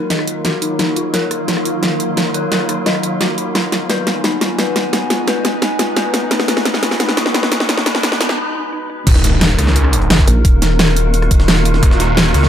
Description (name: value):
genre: dark technical drum and bass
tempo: 174 BPM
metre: 4/4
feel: straight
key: Eb minor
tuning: A4 = 438 Hz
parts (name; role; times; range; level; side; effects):
- swarming drone; sustained chords; 0.0-12.5 s; Eb3 to Cb5; -22 LUFS; equal; built-in reverb, sidechain pumping
- warbly tape-like pad; texture; 0.0-12.5 s; Cb4 to Ab5; -24 LUFS; right 1 dB; chorus, built-in reverb, sidechain pumping
- dark detuned synth bell; arpeggios; 0.1-9.0 s; Eb4 to Eb5; -23 LUFS; left 4 dB; chorus, phaser, sidechain pumping, dub echo
- dubstep drum kit; drums; 0.1-12.5 s; crash cymbal, hi-hat, rim click, snare drum; -16 LUFS; equal; overdrive
- riser and impact; sound effects; 6.2-10.4 s; none; -23 LUFS; equal; none
- snarling distorted saw bass; bass; 9.1-12.5 s; Eb1 to Db2; -14 LUFS; equal; distortion, tube saturation, sidechain pumping
- electronic kick drum; drums; 9.1-11.9 s; none; -12 LUFS; equal; none
- jungle sampler-style drum kit; drums; 9.1-12.5 s; hi-hat, snare drum; -25 LUFS; equal; high-pass filter on hats, high-pass filter on snare
- vowel-sweep wobble bass; bass; 10.3-11.8 s; Eb1 to Bb1; -14 LUFS; equal; chorus
room: light reverb, digital ambience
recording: high-pass filter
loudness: -13 LUFS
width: side -10 dB against mid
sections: 0.0-9.1 A section; 9.1-12.5 B section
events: build-up 0.0-9.1; drum fill 0.0-8.4; riser 6.2-8.4; break 8.4-9.1; drop 9.1-12.5; impact 9.1-10.4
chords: 0.0 Ebm; 3.6 Abm; 9.1 Ebm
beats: 0.10 0.45 | 0.79 1.14 1.48 1.83 | 2.17 2.52 2.86 3.21 | 3.55 3.90 4.24 4.58 | 4.93 5.28 5.62 5.96 | 6.31 6.65 7.00 7.34 | 7.69 8.03 8.38 8.72 | 9.07 9.41 9.76 10.10 | 10.45 10.79 11.14 11.48 | 11.83 12.17